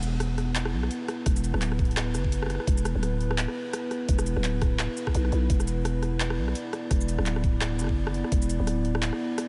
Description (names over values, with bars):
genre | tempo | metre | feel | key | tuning
half-time drum and bass | 170 BPM | 4/4 | swing 57% on 16ths, half-time | unclear | A4 = 440 Hz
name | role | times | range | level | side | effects
dark analog pad | sustained chords | 0.0-9.5 s | B3 to D5 | -34 LUFS | equal | chorus, vintage 12-bit sampler grit, sidechain pumping
growling 808-style bass | bass | 0.0-9.1 s | D1 to B1 | -30 LUFS | equal | none
drum and bass drum kit | drums | 0.0-9.5 s | handclaps, hi-hat, rim click, shaker | -36 LUFS | equal | overdrive, small room ambience
electronic kick drum | drums | 1.3-8.4 s | none | -28 LUFS | equal | overdrive, small room ambience
room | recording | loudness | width
light reverb | nothing above 11.0 kHz | -27 LUFS | mono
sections
0.0-9.5 A section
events
none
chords
0.0 E5